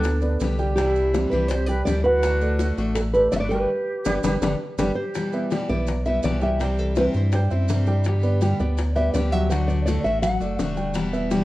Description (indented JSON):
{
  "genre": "latin, Cuban son and guajira",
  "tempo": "165 BPM",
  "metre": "4/4",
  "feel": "straight",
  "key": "G major",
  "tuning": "A4 = 440 Hz",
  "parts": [
    { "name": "nylon-string guitar", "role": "melody", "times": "0.0-10.7 s", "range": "G4 to F#5", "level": "-25 LUFS", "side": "right 1 dB", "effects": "none" },
    { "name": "mellow concert flute", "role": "second line", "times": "0.0-5.8 s", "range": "D4 to C5", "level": "-32 LUFS", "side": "right 1 dB", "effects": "none" },
    { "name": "picked steel-string acoustic guitar", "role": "accompaniment", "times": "0.0-11.4 s", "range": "B2 to G4", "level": "-28 LUFS", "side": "left 2 dB", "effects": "none" },
    { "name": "dark baby grand piano", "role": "arpeggios", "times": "0.0-11.4 s", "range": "F#3 to G5", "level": "-27 LUFS", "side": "right 1 dB", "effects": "none" },
    { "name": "saturated sub bass", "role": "bass", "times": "0.0-11.4 s", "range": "E1 to G2", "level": "-24 LUFS", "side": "equal", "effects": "none" },
    { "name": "maracas", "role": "percussion", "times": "0.0-11.4 s", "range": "none", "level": "-44 LUFS", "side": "right 6 dB", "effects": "none" },
    { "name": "bongos", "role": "percussion", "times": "0.1-11.4 s", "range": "none", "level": "-30 LUFS", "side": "left 4 dB", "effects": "none" }
  ],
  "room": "light reverb",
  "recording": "worn, warbling old tape, cassette tape, warbly pitch drift",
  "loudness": "-20 LUFS",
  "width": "side -17 dB against mid",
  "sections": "0.0-5.1 A section; 5.1-11.4 B section",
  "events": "band accent 3.7-5.1; drum fill 4.2-5.1",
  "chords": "0.0 G; 0.8 Cadd9; 2.2 D; 3.7 G; 5.1 Em; 6.6 C; 8.1 G; 9.5 D",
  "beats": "0.05 0.41 | 0.78 1.14 1.50 1.87 | 2.23 2.60 2.96 3.33 | 3.69 4.06 4.42 4.78 | 5.15 5.51 5.88 6.24 | 6.60 6.96 7.33 7.69 | 8.05 8.41 8.78 9.14 | 9.50 9.86 10.22 10.59 | 10.95 11.31"
}